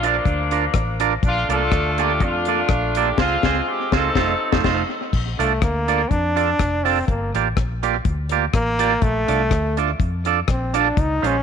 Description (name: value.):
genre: ska.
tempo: 123 BPM.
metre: 4/4.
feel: straight.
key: Bb major.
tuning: A4 = 440 Hz.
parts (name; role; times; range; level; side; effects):
clear horn section; melody; 0.0-4.9 s; F3 to A4; -22 LUFS; left 1 dB; tape echo.
clean electric guitar; accompaniment; 0.0-11.4 s; Ab3 to D5; -23 LUFS; right 13 dB; none.
vintage muted fingered electric bass; bass; 0.0-11.4 s; F1 to F2; -24 LUFS; left 1 dB; transformer saturation.
deep reggae drum kit; drums; 0.0-11.3 s; crash cymbal, hi-hat, kick drum, rim click, snare drum; -23 LUFS; left 3 dB; tape echo.
brilliant trombone; melody; 5.4-11.4 s; A3 to Eb4; -22 LUFS; equal; none.
room: light reverb, small room ambience.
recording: 1960s-style stereo.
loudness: -17 LUFS.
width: side -7 dB against mid.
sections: 0.0-5.1 A section; 5.1-11.4 B section.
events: band accent 3.2-5.1; trombone solo 5.1-11.4.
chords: 0.0 Gm7 (rootless); 1.2 Bbmaj7; 3.2 Dbmaj7; 4.2 F7; 5.1 Bbmaj7; 7.1 Gm7; 9.0 Bbmaj7.